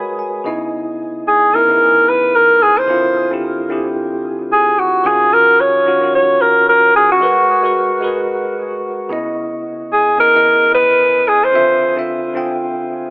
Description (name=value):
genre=amapiano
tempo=111 BPM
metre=4/4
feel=swing 58% on 16ths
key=unclear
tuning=A4 = 441 Hz
part: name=bell-like tine electric piano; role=accompaniment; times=0.0-13.1 s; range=Db3 to Cb6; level=-20 LUFS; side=equal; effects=fast stereo tremolo
part: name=breathy alto saxophone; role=melody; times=1.3-12.0 s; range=Gb4 to Db5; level=-12 LUFS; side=equal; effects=tape echo
room=light reverb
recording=telephone sound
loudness=-11 LUFS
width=side -29 dB against mid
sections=0.0-13.1 A section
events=tine electric piano fill 0.0-0.7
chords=0.5 Dbm9; 2.9 Dm9; 5.0 Ebm9; 7.2 Abm9; 9.1 Dbm9; 11.5 Dm9